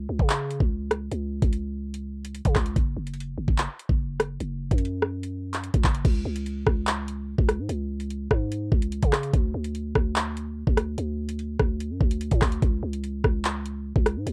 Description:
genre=hip hop, drill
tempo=146 BPM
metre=4/4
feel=half-time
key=unclear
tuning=A4 = 440 Hz
part: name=growling 808-style bass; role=bass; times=0.0-14.3 s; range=F#1 to C#3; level=-32 LUFS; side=equal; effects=none
part: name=drill drum kit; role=drums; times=0.2-14.3 s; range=crash cymbal, handclaps, hi-hat, kick drum, rim click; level=-25 LUFS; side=equal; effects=none
room=little or no reverb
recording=worn, warbling old tape, cassette tape, warbly pitch drift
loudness=-27 LUFS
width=mono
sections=0.0-6.0 A section; 6.0-14.3 B section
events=none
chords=none

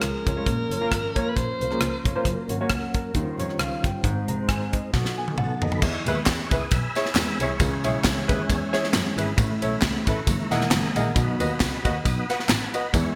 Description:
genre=uptempo gospel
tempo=135 BPM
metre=4/4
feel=swing 55% on 8ths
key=E major from 5.8 s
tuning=A4 = 436 Hz
part: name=breathy alto saxophone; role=melody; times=0.0-2.1 s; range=Bb4 to C5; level=-32 LUFS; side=equal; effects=delay
part: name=clear concert grand piano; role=accompaniment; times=0.0-13.2 s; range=Ab2 to Bb5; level=-31 LUFS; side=equal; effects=analog chorus
part: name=mellow tonewheel organ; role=sustained chords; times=0.0-13.2 s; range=D#3 to E6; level=-33 LUFS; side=equal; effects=fast rotary speaker, chorus vibrato
part: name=warm double bass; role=bass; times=0.0-13.0 s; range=E1 to F#2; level=-32 LUFS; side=equal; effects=none
part: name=tight funk drum kit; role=drums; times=0.0-13.1 s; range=crash cymbal, hi-hat, kick drum, ride cymbal, rim click, snare drum, toms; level=-28 LUFS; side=equal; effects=gated reverb
part: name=tambourine and handclaps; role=percussion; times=5.8-13.1 s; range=none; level=-37 LUFS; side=equal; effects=none
room=moderate lush hall reverb, RT60 1.6 s, small room reverb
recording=bright 1980s-style digital production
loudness=-24 LUFS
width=mono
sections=0.0-5.8 A section; 5.8-13.2 B section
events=drum fill 4.9-5.8; tonewheel organ solo 5.8-13.2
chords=0.5 Bbm; 2.2 Gb; 3.1 Eb13; 4.0 Ab; 4.9 Cb7; 5.8 E; 7.6 C#m; 9.4 A; 10.3 F#13; 11.2 B

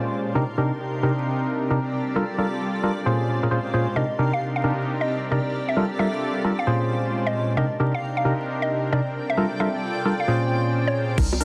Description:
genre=UK garage, two-step garage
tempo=133 BPM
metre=4/4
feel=swing 65% on 16ths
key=C minor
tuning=A4 = 440 Hz
part: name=warm analog pad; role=sustained chords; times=0.0-11.4 s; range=Bb2 to C5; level=-31 LUFS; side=equal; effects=chorus, sidechain pumping
part: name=percussive organ stab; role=stabs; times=0.0-11.4 s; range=Bb2 to C5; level=-26 LUFS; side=equal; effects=chorus, tape echo
part: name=granular cloud pad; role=texture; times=0.0-11.4 s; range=C4 to C6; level=-33 LUFS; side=equal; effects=built-in reverb, sidechain pumping
part: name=mallet-like synth pluck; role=melody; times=4.0-11.0 s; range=Db5 to F5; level=-30 LUFS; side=equal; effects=chorus, delay
part: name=hollow knocking FM bass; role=bass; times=11.2-11.4 s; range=C2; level=-26 LUFS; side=equal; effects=tube saturation
part: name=electronic kick drum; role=drums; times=11.2-11.3 s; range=none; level=-24 LUFS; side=equal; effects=none
part: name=garage drum kit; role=drums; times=11.2-11.4 s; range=bongos, crash cymbal, hi-hat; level=-29 LUFS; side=equal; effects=low-pass filter on snare, low-pass filter on hats, low-pass filter on cymbals, low-pass filter on perc
room=moderate plate reverb, RT60 1.0 s, digital ambience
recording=dense, heavily limited modern master, vinyl crackle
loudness=-24 LUFS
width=mono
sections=0.0-11.2 A section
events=none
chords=0.4 Cm9; 1.9 Gm9; 3.1 Bbm9; 4.0 Cm9; 5.5 Gm9; 6.7 Bbm9; 7.6 Cm9; 9.2 Gm9; 10.3 Bbm9

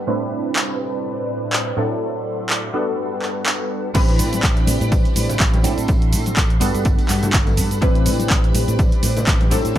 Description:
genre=filtered disco house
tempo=124 BPM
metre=4/4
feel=swing 56% on 16ths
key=A dorian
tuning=A4 = 445 Hz
part: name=funky polysynth comp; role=accompaniment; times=0.0-9.8 s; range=A2 to B4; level=-24 LUFS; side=right 1 dB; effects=chorus, phaser, sidechain pumping, low-pass filter
part: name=string machine, full ensemble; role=sustained chords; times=0.0-9.8 s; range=G3 to C6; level=-28 LUFS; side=equal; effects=phaser, ensemble chorus, sidechain pumping, low-pass filter
part: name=punchy analog drum machine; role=drums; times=0.6-9.8 s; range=cabasa, crash cymbal, handclaps, hi-hat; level=-23 LUFS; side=right 1 dB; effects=overdrive, sidechain pumping on hats, sidechain pumping on cymbals, sidechain pumping on perc
part: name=tambourine and congas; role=percussion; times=3.9-9.8 s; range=none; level=-30 LUFS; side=left 3 dB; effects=sidechain pumping on perc, low-pass filter on perc
part: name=fingered electric bass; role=bass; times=4.0-9.8 s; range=G1 to A2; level=-21 LUFS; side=equal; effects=sidechain pumping, low-pass filter
part: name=electronic kick drum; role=drums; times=4.0-9.8 s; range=none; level=-18 LUFS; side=equal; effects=overdrive
room=digital ambience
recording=none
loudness=-16 LUFS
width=side -12 dB against mid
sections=0.0-4.0 A section; 4.0-9.8 B section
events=filter sweep 0.0-4.0; drop 4.0-9.8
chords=0.1 Am11; 1.8 D9/A; 2.7 Gmaj9; 4.0 Am11; 5.6 D9/A; 6.6 Gmaj9; 7.8 Am11

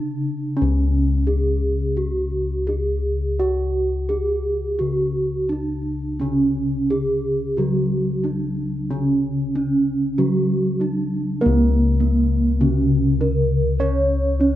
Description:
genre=Javanese gamelan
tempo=84-100 BPM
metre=4/4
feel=straight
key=C# pelog barang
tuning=A4 = 439 Hz
part: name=gamelan-type bronze metallophone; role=melody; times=0.0-14.6 s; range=A#3+20c to C#5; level=-22 LUFS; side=right 2 dB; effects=none
part: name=gamelan-type bronze metallophone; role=accompaniment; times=0.0-0.6, 6.2-14.6 s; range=C#3 to C#4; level=-24 LUFS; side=equal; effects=none
part: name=gamelan-type bossed gongs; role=bass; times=0.0-14.6 s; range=C#2 to C#5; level=-22 LUFS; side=left 2 dB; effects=none
room=little or no reverb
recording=close, detailed microphones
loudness=-18 LUFS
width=side -13 dB against mid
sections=0.6-11.4 A section; 11.4-14.6 B section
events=none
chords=none

